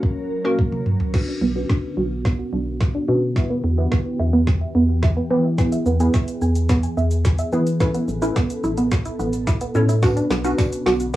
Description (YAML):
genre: dance-pop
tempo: 108 BPM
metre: 4/4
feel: straight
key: B minor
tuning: A4 = 440 Hz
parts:
  - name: hollow square pluck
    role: accompaniment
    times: 0.0-11.0 s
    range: A#3 to C#5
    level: -24 LUFS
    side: left 1 dB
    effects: chorus, sidechain pumping, low-pass filter, cassette tape
  - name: glassy FM pad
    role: sustained chords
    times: 0.0-11.2 s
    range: B2 to A#4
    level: -29 LUFS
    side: right 1 dB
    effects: ensemble chorus, built-in reverb, sidechain pumping, low-pass filter, cassette tape
  - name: smooth R&B drum kit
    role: drums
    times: 0.0-11.2 s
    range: crash cymbal, hi-hat, kick drum, shaker, snare drum, toms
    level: -20 LUFS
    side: equal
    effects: cassette tape
  - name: wide unison pluck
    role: arpeggios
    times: 1.1-11.2 s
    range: B3 to G#5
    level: -24 LUFS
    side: right 2 dB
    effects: sidechain pumping, low-pass filter, cassette tape, tape echo
  - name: organ-like FM bass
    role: bass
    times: 1.4-11.2 s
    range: A1 to E3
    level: -21 LUFS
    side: equal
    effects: sidechain pumping
  - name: tambourine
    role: percussion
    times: 10.0-11.0 s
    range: none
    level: -45 LUFS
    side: right 9 dB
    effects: none
room: light reverb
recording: home recording on cassette, small room ambience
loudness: -18 LUFS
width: side -15 dB against mid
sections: 0.0-1.1 A section; 1.1-11.2 B section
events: drum fill 0.6-1.1, 1.1-11.2; build-up 1.1-11.2; filter sweep 1.1-11.2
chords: 0.0 F#; 1.1 Bmadd9; 3.4 Em; 5.6 E; 7.8 Aadd9; 10.0 Bmadd9